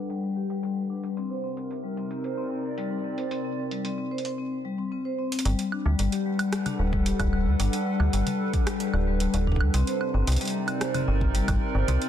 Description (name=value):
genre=IDM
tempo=112 BPM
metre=4/4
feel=straight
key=unclear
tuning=A4 = 440 Hz
part: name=warbly tape-like pad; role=sustained chords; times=0.0-12.1 s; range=C3 to F#5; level=-32 LUFS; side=left 1 dB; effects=chorus, built-in reverb, vintage 12-bit sampler grit, sidechain pumping
part: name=vibraphone with medium mallets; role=arpeggios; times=0.0-12.1 s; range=G3 to C5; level=-30 LUFS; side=left 2 dB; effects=vintage 12-bit sampler grit, low-pass filter, ping-pong delay
part: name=booming analog drum machine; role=drums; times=0.1-12.1 s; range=hi-hat, rim click, toms, woodblock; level=-33 LUFS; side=right 1 dB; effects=studio reverb
part: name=metallic FM bass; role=bass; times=5.5-12.0 s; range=D1 to D2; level=-24 LUFS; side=equal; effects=none
part: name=electronic kick drum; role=drums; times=6.9-11.6 s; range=none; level=-27 LUFS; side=equal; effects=studio reverb
room=light reverb, digital ambience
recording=dense, heavily limited modern master, low-pass filter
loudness=-24 LUFS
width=side -10 dB against mid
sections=0.0-5.5 A section; 5.5-12.1 B section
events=filter sweep on vibraphone 0.0-5.5; filter sweep 0.0-5.5; drum fill 5.2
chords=0.0 Gmaj7; 1.2 Cm9; 5.5 Gmaj7; 9.7 Cm9